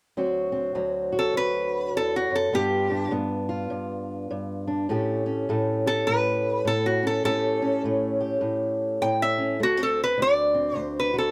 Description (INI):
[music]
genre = acoustic country blues, solo or duo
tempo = 102 BPM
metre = 4/4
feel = swing 62% on 8ths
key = unclear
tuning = A4 = 442 Hz
[part]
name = fingerpicked old ladder-braced acoustic guitar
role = accompaniment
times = 0.2-11.3 s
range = D2 to G4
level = -28 LUFS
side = equal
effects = none
[part]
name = lap resonator guitar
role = melody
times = 1.2-11.3 s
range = F#4 to G5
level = -26 LUFS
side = equal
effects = none
[sound]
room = moderate booth ambience, RT60 0.2 s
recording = none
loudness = -25 LUFS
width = mono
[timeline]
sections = 0.2-9.6 A section; 9.6-11.3 B section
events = none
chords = 0.2 D7; 2.5 G7; 4.9 A7; 9.6 D7(no3)